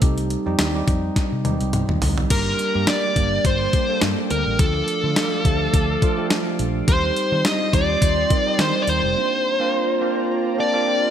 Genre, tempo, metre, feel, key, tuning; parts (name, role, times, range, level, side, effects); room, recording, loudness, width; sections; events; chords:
1980s-style pop; 105 BPM; 4/4; swing 55% on 16ths; C dorian; A4 = 439 Hz
bell-like tine electric piano; accompaniment; 0.0-11.1 s; F3 to A5; -24 LUFS; right 4 dB; wide subtle chorus
vintage muted fingered electric bass; bass; 0.0-9.1 s; F1 to Eb3; -25 LUFS; left 1 dB
clean 12-bit digital drum machine; drums; 0.0-9.0 s; crash cymbal, hi-hat, kick drum, snare drum, toms; -21 LUFS; equal; overdrive
dark smooth lead guitar; melody; 2.3-11.1 s; A4 to Eb5; -21 LUFS; left 1 dB; overdrive, ping-pong delay
phased analog pad; sustained chords; 3.2-11.1 s; Bb3 to D6; -31 LUFS; left 1 dB; phaser, chorus
light reverb; bright 1980s-style digital production; -18 LUFS; side -9 dB against mid
0.0-2.3 A section; 2.3-11.1 B section
drum fill 1.2-2.3; tine electric piano fill 10.3-11.1
0.0 Cm; 2.3 Gm; 4.6 Dm; 6.9 Cm/Eb; 9.2 Bbadd9